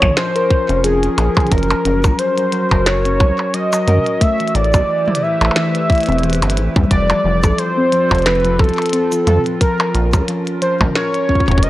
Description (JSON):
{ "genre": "IDM", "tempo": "89 BPM", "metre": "4/4", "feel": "swing 56% on 16ths", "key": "unclear", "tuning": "A4 = 440 Hz", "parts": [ { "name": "warm velvety synth lead", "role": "melody", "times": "0.0-11.7 s", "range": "Ab4 to E5", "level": "-18 LUFS", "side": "equal", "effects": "chorus, cassette tape, digital delay, shimmer reverb" }, { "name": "warbly tape-like pad", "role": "sustained chords", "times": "0.0-11.7 s", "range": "A3 to C5", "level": "-25 LUFS", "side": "equal", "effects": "chorus, built-in reverb, phaser, shimmer reverb" }, { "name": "harp-like synth pluck", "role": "arpeggios", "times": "0.0-11.6 s", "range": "E3 to Bb4", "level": "-20 LUFS", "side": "left 2 dB", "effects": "chorus, cassette tape, digital delay, shimmer reverb" }, { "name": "deep acid bass", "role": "bass", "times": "0.0-11.7 s", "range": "E1 to Gb2", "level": "-17 LUFS", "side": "equal", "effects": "none" }, { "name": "electronic kick drum", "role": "drums", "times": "0.0-11.6 s", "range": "none", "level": "-15 LUFS", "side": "equal", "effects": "none" }, { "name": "glitchy drum kit", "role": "drums", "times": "0.0-11.7 s", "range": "cabasa, hi-hat, percussion blips, snare drum, toms", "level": "-20 LUFS", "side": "equal", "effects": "none" } ], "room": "light reverb, digital ambience", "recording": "worn, warbling old tape, cassette tape, warbly pitch drift", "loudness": "-13 LUFS", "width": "side -16 dB against mid", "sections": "0.0-11.7 A section", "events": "none", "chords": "0.0 Bbm; 1.5 Gb; 4.2 Am7; 6.9 F; 9.6 Bbm", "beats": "0.17 0.84 | 1.52 2.19 2.86 3.54 | 4.21 4.89 5.56 6.24 | 6.91 7.58 8.26 8.93 | 9.61 10.28 10.95 11.63" }